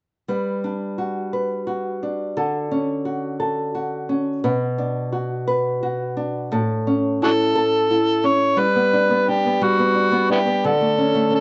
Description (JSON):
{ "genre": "six-eight pop ballad", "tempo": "58 BPM (dotted quarters)", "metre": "6/8", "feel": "straight", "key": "unclear", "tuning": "A4 = 443 Hz", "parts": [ { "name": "nylon-string guitar", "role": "accompaniment", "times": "0.3-11.4 s", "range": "A2 to B4", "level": "-23 LUFS", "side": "equal", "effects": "slapback echo" }, { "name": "overdriven harmonica", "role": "melody", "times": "7.2-11.4 s", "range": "B3 to C#5", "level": "-20 LUFS", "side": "equal", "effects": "none" } ], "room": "light reverb", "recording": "recorded outdoors, with no room sound, nothing above 7.9 kHz", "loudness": "-21 LUFS", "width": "mono", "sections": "0.3-8.6 A section; 8.6-11.4 B section", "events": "none", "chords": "0.3 Gmaj7; 2.4 Dmaj7; 4.4 Bm; 6.5 A; 8.6 Gmaj7; 10.6 D5" }